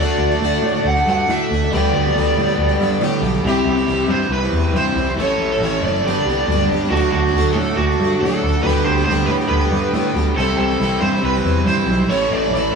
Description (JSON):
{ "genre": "folk rock and heartland rock", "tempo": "139 BPM", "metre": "4/4", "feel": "straight", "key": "D mixolydian", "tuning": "A4 = 440 Hz", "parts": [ { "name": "lead guitar through a small cranked amp", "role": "melody", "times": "0.0-12.7 s", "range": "F#4 to F#5", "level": "-20 LUFS", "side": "right 1 dB", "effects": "overdrive" }, { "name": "picked plugged-in twelve-string acoustic guitar", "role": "accompaniment", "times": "0.0-12.8 s", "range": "G2 to G4", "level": "-22 LUFS", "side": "left 4 dB", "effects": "none" }, { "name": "reed electric piano", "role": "accompaniment", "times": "0.0-12.8 s", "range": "C4 to E5", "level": "-30 LUFS", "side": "right 2 dB", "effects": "none" }, { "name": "bright tonewheel organ", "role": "sustained chords", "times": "0.0-12.8 s", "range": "C4 to E6", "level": "-32 LUFS", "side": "right 1 dB", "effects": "none" }, { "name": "overdriven electric guitar", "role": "riff", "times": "0.0-12.8 s", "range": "G2 to A4", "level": "-23 LUFS", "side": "right 3 dB", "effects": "none" }, { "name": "picked electric bass", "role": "bass", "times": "0.0-12.7 s", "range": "F#1 to A2", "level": "-20 LUFS", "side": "right 1 dB", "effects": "none" } ], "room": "moderate large studio reverb, RT60 1.0 s", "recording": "band playing live in one room", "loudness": "-15 LUFS", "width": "side -5 dB against mid", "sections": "0.0-6.9 A section; 6.9-12.8 A section", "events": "reed electric piano fill 2.8-3.5", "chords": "0.0 D; 1.7 G/D; 3.5 C; 5.2 A; 6.1 G; 6.9 D; 8.6 G/D; 10.4 C; 12.1 A" }